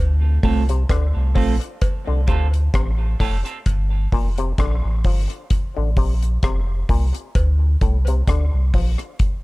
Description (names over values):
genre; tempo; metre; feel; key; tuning
dub reggae; 65 BPM; 4/4; swing 56% on 16ths; D minor; A4 = 440 Hz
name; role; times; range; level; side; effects
warm sub bass; bass; 0.0-9.0 s; F1 to D2; -18 LUFS; equal; none
semi-hollow electric guitar; accompaniment; 0.4-3.6 s; A3 to A4; -27 LUFS; right 6 dB; high-pass filter, tape echo
auto-wah clav; arpeggios; 0.4-8.9 s; A2 to F3; -30 LUFS; left 5 dB; overdrive, tape echo
deep reggae drum kit; drums; 0.4-9.4 s; hi-hat, kick drum, rim click; -20 LUFS; equal; none
cowbell; percussion; 0.9-7.6 s; none; -36 LUFS; equal; high-pass filter on perc, tape echo
room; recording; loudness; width
little or no reverb; dark, warm production; -17 LUFS; side -21 dB against mid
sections
0.0-9.4 A section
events
filter sweep 0.0-7.4; part muted 7.4-9.4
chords
0.0 Dm7; 3.7 Gm7; 7.4 D7(no3)